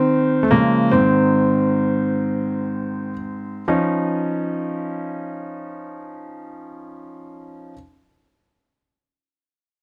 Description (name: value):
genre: pop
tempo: 38-52 BPM (dotted quarters)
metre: 6/8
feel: straight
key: Db major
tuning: A4 = 435 Hz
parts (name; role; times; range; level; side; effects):
- bright concert grand piano; accompaniment; 0.0-7.7 s; Ab2 to Eb4; -21 LUFS; equal; none
room: studio reverb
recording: dry, close 1970s-style studio recording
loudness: -20 LUFS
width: mono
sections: 0.0-3.7 A section; 3.7-6.8 B section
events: slowing down 0.0-3.7; grand piano solo 0.0-3.7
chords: 0.0 Dbadd9; 0.9 Ab; 3.7 Dbadd9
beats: | 0.92 2.21 | 3.68 5.25